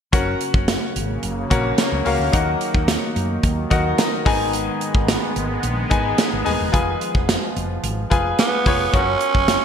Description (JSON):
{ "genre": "1980s-style pop", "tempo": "109 BPM", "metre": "4/4", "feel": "straight", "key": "unclear", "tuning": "A4 = 440 Hz", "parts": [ { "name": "bright grand piano", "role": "accompaniment", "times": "0.1-9.6 s", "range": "Ab2 to Bb5", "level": "-23 LUFS", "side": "left 3 dB", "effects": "none" }, { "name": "sweeping resonant pad", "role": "sustained chords", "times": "0.1-8.9 s", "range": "Db3 to Cb4", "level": "-27 LUFS", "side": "right 1 dB", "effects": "chorus" }, { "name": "woody fretless electric bass", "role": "bass", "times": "0.1-9.6 s", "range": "Eb1 to Gb2", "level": "-25 LUFS", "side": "equal", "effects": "none" }, { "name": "modern studio drum kit", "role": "drums", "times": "0.1-9.6 s", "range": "hi-hat, kick drum, snare drum", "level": "-21 LUFS", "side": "right 1 dB", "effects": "gated reverb" }, { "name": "growling tenor saxophone", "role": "melody", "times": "8.4-9.6 s", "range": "Cb4 to Db4", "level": "-19 LUFS", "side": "right 4 dB", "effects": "none" } ], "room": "moderate lush hall reverb, RT60 2.2 s", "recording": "bright 1980s-style digital production", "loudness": "-17 LUFS", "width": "side -8 dB against mid", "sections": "0.1-8.9 A section", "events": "grand piano fill 3.7-4.5", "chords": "0.1 Gb; 2.3 Ebm; 4.3 Abm; 6.7 Fdim; 8.9 Gb" }